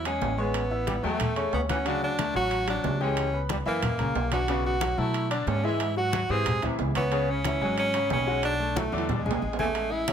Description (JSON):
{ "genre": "latin, salsa", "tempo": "182 BPM", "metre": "4/4", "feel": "straight", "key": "A major", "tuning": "A4 = 440 Hz", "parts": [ { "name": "clear tenor saxophone", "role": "melody", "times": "0.0-10.1 s", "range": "G#3 to G#4", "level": "-29 LUFS", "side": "right 1 dB", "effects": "plate reverb" }, { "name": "bright trombone section", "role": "second line", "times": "0.0-9.7 s", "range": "B#2 to G#3", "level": "-34 LUFS", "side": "equal", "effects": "none" }, { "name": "upright bass", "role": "bass", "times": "0.0-10.1 s", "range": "G#1 to B2", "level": "-31 LUFS", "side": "equal", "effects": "none" }, { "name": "bright grand piano", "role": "accompaniment", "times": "0.1-10.1 s", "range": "B2 to G#6", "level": "-32 LUFS", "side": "left 5 dB", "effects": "none" }, { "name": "congas", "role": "percussion", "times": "0.1-10.1 s", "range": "none", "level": "-34 LUFS", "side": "left 2 dB", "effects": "none" }, { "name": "timbales", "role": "percussion", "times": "0.1-10.1 s", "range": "none", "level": "-34 LUFS", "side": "right 8 dB", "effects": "none" } ], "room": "light reverb", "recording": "none", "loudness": "-24 LUFS", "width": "side -8 dB against mid", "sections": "0.0-9.8 A section", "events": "drum fill 8.8-9.8", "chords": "0.0 Amaj7; 0.5 A13; 3.2 C#m7b5; 3.8 F#7; 4.5 Bm9; 5.8 G#aug7; 7.1 C#m7; 8.4 Bm7; 9.1 E13" }